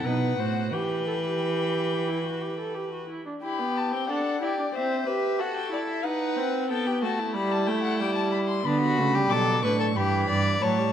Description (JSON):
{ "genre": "classical, baroque-style fugue for string quartet", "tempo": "92 BPM", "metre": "4/4", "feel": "straight", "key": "E minor", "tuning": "A4 = 440 Hz", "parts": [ { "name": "dark violin", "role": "melody", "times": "0.0-10.9 s", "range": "D5 to D6", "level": "-31 LUFS", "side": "left 6 dB", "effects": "none" }, { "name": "rich violin", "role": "second line", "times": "0.0-10.9 s", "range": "D4 to D5", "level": "-29 LUFS", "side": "left 3 dB", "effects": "none" }, { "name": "rich viola", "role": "accompaniment", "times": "0.0-10.9 s", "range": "D3 to A4", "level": "-29 LUFS", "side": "right 1 dB", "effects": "none" }, { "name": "dark cello", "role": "bass", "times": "0.0-3.1, 8.6-10.9 s", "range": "G2 to E3", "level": "-27 LUFS", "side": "right 4 dB", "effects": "none" } ], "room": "moderate concert hall reverb, RT60 1.8 s", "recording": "none", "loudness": "-24 LUFS", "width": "side -9 dB against mid", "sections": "0.0-3.4 A section; 3.4-10.9 B section", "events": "none", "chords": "0.1 B7; 0.7 Em; 4.7 Am/C; 6.0 B7; 7.3 Em/G; 8.6 Bm; 10.0 Em/G", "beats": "0.06 | 0.73 1.40 2.08 2.75 | 3.43 4.09 4.74 5.39 | 6.05 6.70 7.35 8.00 | 8.65 9.30 9.96 10.62" }